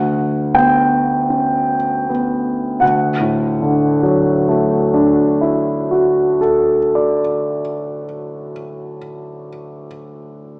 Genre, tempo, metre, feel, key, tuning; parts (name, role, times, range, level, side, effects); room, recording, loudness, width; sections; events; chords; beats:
classical, impressionist solo piano; 24-33 BPM (dotted quarters); 9/8; rubato; D major; A4 = 440 Hz
clear concert grand piano; solo; 0.0-10.6 s; D2 to G5; -14 LUFS; equal
wet recital hall reverb, RT60 1.6 s; small speaker sound; -13 LUFS; side -28 dB against mid
0.0-2.8 A section; 2.8-8.4 B section
slowing down 0.0-2.8
0.0 G/D; 2.8 Dadd9
0.56 | 2.81 4.65 6.51